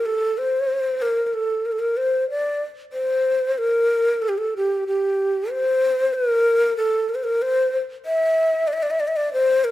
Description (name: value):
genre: Turkish makam ensemble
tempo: 94 BPM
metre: 4/4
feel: straight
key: unclear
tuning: A4 = 440 Hz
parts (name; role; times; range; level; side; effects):
- breathy mellow ney; solo; 0.0-9.7 s; G4 to E5-28c; -19 LUFS; equal; none
room: moderate recital hall reverb, RT60 1.4 s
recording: none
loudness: -19 LUFS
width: side -14 dB against mid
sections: 0.0-9.7 A section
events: none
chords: none